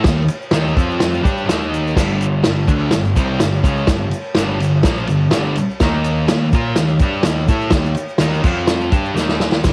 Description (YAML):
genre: garage rock duo or trio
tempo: 125 BPM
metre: 4/4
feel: straight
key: unclear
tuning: A4 = 440 Hz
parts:
  - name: thick fuzz guitar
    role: riff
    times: 0.0-9.7 s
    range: G2 to Bb4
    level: -21 LUFS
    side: equal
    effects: distortion
  - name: fuzz picked electric bass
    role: bass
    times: 0.0-9.7 s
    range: G1 to Bb2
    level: -25 LUFS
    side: equal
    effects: overdrive
  - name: vintage drum kit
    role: drums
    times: 0.0-9.7 s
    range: crash cymbal, kick drum, ride cymbal, snare drum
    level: -20 LUFS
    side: equal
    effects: cassette tape
  - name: egg shaker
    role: percussion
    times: 0.1-9.7 s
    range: none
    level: -41 LUFS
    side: equal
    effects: none
room: moderate booth ambience, RT60 0.2 s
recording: home recording on cassette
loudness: -17 LUFS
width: mono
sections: 0.0-9.6 A section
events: drum fill 9.2-9.6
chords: 0.0 Eb5; 0.8 F5; 1.2 Eb5; 2.0 Gm; 5.8 Eb5; 8.4 F5; 8.9 Eb5